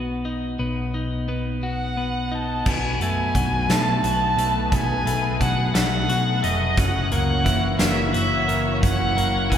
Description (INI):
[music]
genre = post-rock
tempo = 58 BPM (dotted quarters)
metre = 6/8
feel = straight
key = unclear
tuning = A4 = 441 Hz
[part]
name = twelve-string electric guitar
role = arpeggios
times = 0.0-9.6 s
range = F#2 to F#4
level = -26 LUFS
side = left 1 dB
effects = none
[part]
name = picked electric bass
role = bass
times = 0.0-9.6 s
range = F1 to F#2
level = -25 LUFS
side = left 1 dB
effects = none
[part]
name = muted violin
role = melody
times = 1.6-9.6 s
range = D#5 to A5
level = -24 LUFS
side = right 1 dB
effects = none
[part]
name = muted studio string section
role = sustained chords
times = 2.7-9.6 s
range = A3 to C#5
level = -33 LUFS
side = equal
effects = none
[part]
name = huge arena drum kit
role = drums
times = 2.7-9.6 s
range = crash cymbal, hi-hat, kick drum, snare drum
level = -25 LUFS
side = equal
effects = none
[sound]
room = wet church reverb, RT60 3.4 s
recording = recorded in a church or concert hall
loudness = -19 LUFS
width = side -9 dB against mid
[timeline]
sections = 0.0-2.7 A section; 2.7-9.6 B section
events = none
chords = 0.0 B; 2.7 B7; 6.8 F#7